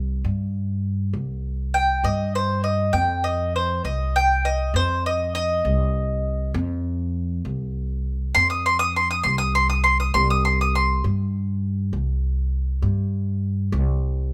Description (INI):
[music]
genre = acoustic country blues, solo or duo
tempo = 67 BPM (dotted quarters)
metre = 12/8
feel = straight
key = unclear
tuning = A4 = 440 Hz
[part]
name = upright bass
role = bass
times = 0.0-14.3 s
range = C2 to G2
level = -25 LUFS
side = equal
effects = none
[part]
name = mandolin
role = melody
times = 1.7-11.0 s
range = C5 to Eb6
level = -23 LUFS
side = equal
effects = none
[sound]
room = light reverb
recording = band playing live in one room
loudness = -23 LUFS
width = mono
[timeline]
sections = 0.0-14.3 A section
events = mandolin solo 0.0-14.3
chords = 0.0 C5; 2.9 F5; 10.1 C5